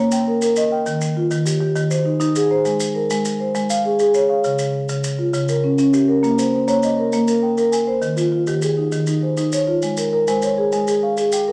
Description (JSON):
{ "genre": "southern african traditional, mbira-style interlocking cycle", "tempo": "134 BPM (dotted quarters)", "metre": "12/8", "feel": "straight", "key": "Bb dorian", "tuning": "A4 = 439 Hz", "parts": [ { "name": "marimba with medium mallets", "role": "arpeggios", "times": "0.0-11.5 s", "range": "Db3 to Ab5", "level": "-19 LUFS", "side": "equal", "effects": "none" }, { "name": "maracas", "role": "percussion", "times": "0.1-11.5 s", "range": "none", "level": "-33 LUFS", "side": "equal", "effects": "none" } ], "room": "wet large studio reverb, RT60 0.9 s", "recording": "none", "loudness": "-19 LUFS", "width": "mono", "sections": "0.0-6.2 A section; 6.2-11.5 A section", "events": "none", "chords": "0.0 Bbm; 0.9 Eb; 2.7 Ab; 4.4 Db; 6.2 Bbm; 8.0 Eb; 9.8 Ab" }